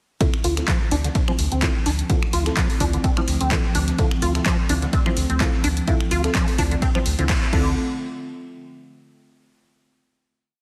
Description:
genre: acid house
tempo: 127 BPM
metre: 4/4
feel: swing 55% on 16ths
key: D minor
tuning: A4 = 439 Hz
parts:
  - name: warbly tape-like pad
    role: sustained chords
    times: 0.2-7.7 s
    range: D3 to F4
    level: -33 LUFS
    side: equal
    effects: chorus, built-in reverb, sidechain pumping
  - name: liquid acid bass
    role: riff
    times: 0.2-7.7 s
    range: D3 to F4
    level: -30 LUFS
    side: equal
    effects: tube saturation, analog chorus, sidechain pumping, digital delay
  - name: deep mellow chord stab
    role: stabs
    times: 0.2-7.7 s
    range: C4 to D5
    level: -32 LUFS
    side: equal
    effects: chorus, phaser, cassette tape, digital delay
  - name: dusty soul sampler-style drum kit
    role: drums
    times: 0.2-7.5 s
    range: hi-hat, ride cymbal, snare drum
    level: -40 LUFS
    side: equal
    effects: none
  - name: electronic kick drum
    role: drums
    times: 0.2-7.6 s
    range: none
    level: -24 LUFS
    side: equal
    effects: none
  - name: punchy analog drum machine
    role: drums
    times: 0.2-7.6 s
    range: crash cymbal, finger snaps, handclaps, hi-hat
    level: -30 LUFS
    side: equal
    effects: none
  - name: round analog bass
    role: bass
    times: 0.4-7.7 s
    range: D2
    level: -26 LUFS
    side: equal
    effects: sidechain pumping
room: light reverb, digital ambience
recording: heavily compressed radio sound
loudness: -21 LUFS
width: mono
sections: 0.2-7.8 groove; 7.8-9.7 final hit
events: filter sweep on acid bass 0.2-7.8; band accent 7.3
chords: 0.2 Dm7; 7.8 N.C.

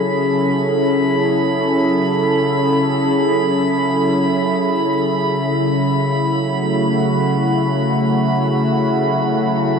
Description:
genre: ambient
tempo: free time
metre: none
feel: none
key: unclear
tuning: A4 = 441 Hz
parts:
  - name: warm analog pad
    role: sustained chords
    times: 0.0-9.8 s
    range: C#3 to A4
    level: -16 LUFS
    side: left 1 dB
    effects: lush chorus, shimmer reverb
  - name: organ-like drone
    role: drone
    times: 0.0-9.8 s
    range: C#3 to F#3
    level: -23 LUFS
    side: right 2 dB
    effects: ensemble chorus, built-in reverb, phaser
  - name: drifting glass-harmonics texture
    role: texture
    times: 0.0-9.8 s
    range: B5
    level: -23 LUFS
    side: right 1 dB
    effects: chorus, built-in reverb, shimmer reverb
room: wet huge ambient reverb, RT60 9.3 s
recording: dark, warm production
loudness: -15 LUFS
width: side -6 dB against mid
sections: 0.0-9.8 A section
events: none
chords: 0.0 A69/C#

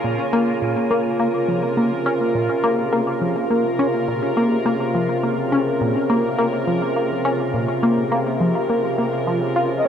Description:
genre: ambient, sequencer-driven space music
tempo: 104 BPM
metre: 4/4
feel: straight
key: Bb minor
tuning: A4 = 440 Hz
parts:
  - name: evolving wavetable pad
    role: sustained chords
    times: 0.0-9.9 s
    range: C3 to Bb4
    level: -20 LUFS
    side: right 1 dB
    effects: chorus, built-in reverb
  - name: tight sequenced synth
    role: riff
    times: 0.0-9.9 s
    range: Bb2 to F4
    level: -21 LUFS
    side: left 1 dB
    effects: chorus, analog delay
  - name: wind-like tuned noise texture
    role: texture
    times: 0.0-0.6 s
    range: Ab5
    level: -39 LUFS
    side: right 2 dB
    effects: none
  - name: breathy flute-like synth lead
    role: melody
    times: 9.8-9.9 s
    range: Eb5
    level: -17 LUFS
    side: left 1 dB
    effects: wide subtle chorus
room: wet huge ambient reverb, RT60 8.3 s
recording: none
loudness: -18 LUFS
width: side -8 dB against mid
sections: 0.6-9.9 A section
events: none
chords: 0.0 Bbm7; 0.6 Bbmadd9

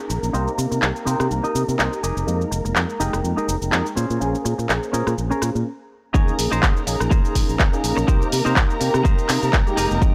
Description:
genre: filtered disco house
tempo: 124 BPM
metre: 4/4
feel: swing 55% on 16ths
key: unclear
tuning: A4 = 439 Hz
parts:
  - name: tine electric piano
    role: accompaniment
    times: 0.0-10.1 s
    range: Ab3 to G5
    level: -29 LUFS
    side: equal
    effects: phaser, sidechain pumping, low-pass filter
  - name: warm studio violin section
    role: sustained chords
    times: 0.0-10.1 s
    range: Bb4 to Bb5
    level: -31 LUFS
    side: equal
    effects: sidechain pumping, low-pass filter
  - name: semi-hollow electric guitar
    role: riff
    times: 0.1-10.1 s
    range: Db4 to Ab5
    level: -29 LUFS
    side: equal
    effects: sidechain pumping, low-pass filter
  - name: modern bright fingered electric bass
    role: bass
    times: 0.1-10.1 s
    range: F1 to C3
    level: -26 LUFS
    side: equal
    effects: sidechain pumping, low-pass filter
  - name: house drum kit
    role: drums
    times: 0.1-10.1 s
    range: cabasa, handclaps, hi-hat, rim click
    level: -26 LUFS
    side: equal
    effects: small room ambience, sidechain pumping on perc, sidechain pumping on hats
  - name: tambourine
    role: percussion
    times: 0.1-5.6 s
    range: none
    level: barely audible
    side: none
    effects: none
  - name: electronic kick drum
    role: drums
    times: 6.1-10.1 s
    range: none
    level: -20 LUFS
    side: equal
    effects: small room ambience
room: little or no reverb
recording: dry, gritty hardware recording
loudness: -21 LUFS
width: mono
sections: 0.0-6.1 A section; 6.1-10.1 B section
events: filter sweep 0.0-6.1; clean electric guitar fill 1.5-2.3; stop 5.7-6.1; drop 6.1-10.1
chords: 0.3 Cm7; 2.0 Fm11; 4.0 Bbm9; 6.1 Eb7sus4; 8.1 Cm7

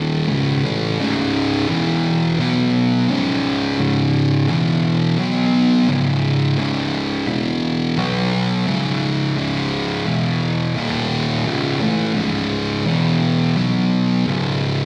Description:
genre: metal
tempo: 86 BPM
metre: 4/4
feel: straight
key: C# minor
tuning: A4 = 440 Hz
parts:
  - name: thick fuzz guitar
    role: solo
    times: 0.0-14.8 s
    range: C#2 to B3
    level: -19 LUFS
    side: equal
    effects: distortion, tape echo
room: little or no reverb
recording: live gig heard through the venue's PA, recital hall reverb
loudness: -19 LUFS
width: mono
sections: 1.0-14.8 A section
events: none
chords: 0.3 C#m; 1.0 C#5; 1.7 E5; 2.4 B5; 3.1 C#5; 4.5 E5; 5.2 B5; 5.9 C#5; 7.3 E5; 8.0 B5; 8.7 C#5; 10.1 E5; 10.8 D#5; 11.5 C#m; 12.9 E5; 13.6 B5; 14.3 C#5

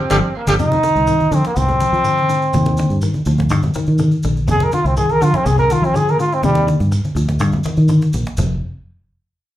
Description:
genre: afrobeat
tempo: 123 BPM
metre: 4/4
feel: straight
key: F dorian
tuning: A4 = 444 Hz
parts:
  - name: brilliant trombone section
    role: second line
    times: 0.0-0.5 s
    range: Bb3 to C4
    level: -24 LUFS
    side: right 3 dB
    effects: slapback echo
  - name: mellow trumpet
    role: melody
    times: 0.1-0.5 s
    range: G4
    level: -20 LUFS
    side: right 2 dB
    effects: slapback echo
  - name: breathy tenor saxophone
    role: second line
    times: 0.1-0.5 s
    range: D3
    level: -27 LUFS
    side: right 5 dB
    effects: slapback echo, tape echo
  - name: clean electric guitar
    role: arpeggios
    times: 0.1-8.5 s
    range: Ab2 to G3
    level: -21 LUFS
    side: left 3 dB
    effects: phaser, slapback echo
  - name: fingered electric bass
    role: bass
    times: 0.1-8.6 s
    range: F1 to F3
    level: -17 LUFS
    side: equal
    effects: none
  - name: cajon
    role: drums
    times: 0.1-8.5 s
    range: none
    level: -30 LUFS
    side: equal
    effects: slapback echo
  - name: congas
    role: percussion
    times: 0.1-8.5 s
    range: none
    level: -24 LUFS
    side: right 1 dB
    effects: slapback echo
  - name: shekere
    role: percussion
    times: 0.1-8.5 s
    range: none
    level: -29 LUFS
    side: right 1 dB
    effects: none
  - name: brilliant trombone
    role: melody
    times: 0.6-6.7 s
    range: G3 to Bb4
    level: -16 LUFS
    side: right 1 dB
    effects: slapback echo
room: light reverb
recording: live gig heard through the venue's PA, club reverb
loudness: -14 LUFS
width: side -13 dB against mid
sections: 0.6-8.4 A section; 8.4-9.6 B section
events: band accent 0.0-0.6; trombone solo 0.6-8.4; drum fill 7.9-8.4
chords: 0.0 G7(no3); 0.6 Fm7; 2.5 Ebmaj7; 4.5 Fm7; 6.4 Ebmaj7; 8.4 N.C.

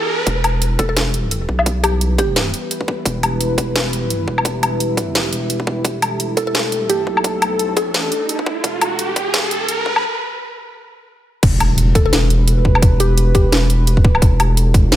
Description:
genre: half-time drum and bass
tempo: 172 BPM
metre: 4/4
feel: swing 57% on 16ths, half-time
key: E minor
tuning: A4 = 440 Hz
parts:
  - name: dark analog pad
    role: sustained chords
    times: 0.0-15.0 s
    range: E4 to A5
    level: -24 LUFS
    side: equal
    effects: chorus, sidechain pumping
  - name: riser and impact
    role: sound effects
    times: 0.0-0.3, 7.1-12.8 s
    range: none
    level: -23 LUFS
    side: right 1 dB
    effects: none
  - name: saturated sub bass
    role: bass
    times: 0.3-15.0 s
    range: E1 to B1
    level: -18 LUFS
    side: equal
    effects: none
  - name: drum and bass drum kit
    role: drums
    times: 0.3-15.0 s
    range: crash cymbal, hi-hat, snare drum, woodblock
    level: -19 LUFS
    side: left 1 dB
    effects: overdrive, high-pass filter on hats, studio reverb, high-pass filter on perc, high-pass filter on snare, high-pass filter on cymbals
  - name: electronic kick drum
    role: drums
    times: 0.3-14.8 s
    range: none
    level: -16 LUFS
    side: equal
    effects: overdrive, high-pass filter on kick, studio reverb
  - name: mallet-like synth pluck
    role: melody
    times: 0.8-2.7, 6.4-8.3, 12.0-13.8 s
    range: G4 to A4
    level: -23 LUFS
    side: equal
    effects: chorus, phaser, tape echo
room: light reverb, digital ambience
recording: high-pass filter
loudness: -14 LUFS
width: side -12 dB against mid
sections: 0.3-11.4 A section; 11.4-15.0 B section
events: riser 0.0, 7.1-10.0; build-up 0.3-11.4; filter sweep 0.3-11.4; break 10.0-11.4; drop 11.4-15.0; impact 11.4-12.8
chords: 0.3 Em

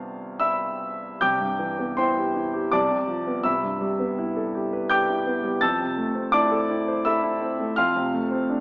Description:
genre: classical, impressionist solo piano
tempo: 82 BPM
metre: 3/4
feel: uneven beats, rubato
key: C major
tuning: A4 = 440 Hz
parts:
  - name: clear concert grand piano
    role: solo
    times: 0.0-8.6 s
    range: C2 to A6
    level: -21 LUFS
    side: equal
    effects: none
room: wet concert hall reverb, RT60 2.2 s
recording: AM radio sound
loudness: -21 LUFS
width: side -25 dB against mid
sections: 0.0-1.2 A section; 1.2-8.6 B section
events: none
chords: 0.0 Cmaj9; 1.2 Cmaj7; 2.7 F/C; 3.4 Am9/C; 5.6 Fmaj7; 7.8 Dm7/F

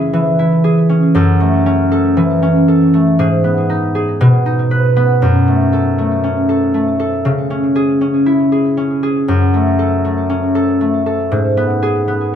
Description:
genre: folktronica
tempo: 118 BPM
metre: 4/4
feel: straight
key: F# dorian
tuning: A4 = 440 Hz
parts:
  - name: concert harp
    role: solo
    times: 0.0-12.4 s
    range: F#2 to B4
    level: -11 LUFS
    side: equal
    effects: none
room: moderate small room reverb, RT60 0.5 s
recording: none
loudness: -11 LUFS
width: side -9 dB against mid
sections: 0.0-5.2 A section; 5.2-12.4 B section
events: none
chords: 0.0 C#m; 1.1 F#m7; 3.2 G#m; 4.2 B; 5.2 F#m; 7.2 C#m; 9.3 F#m; 11.3 G#m

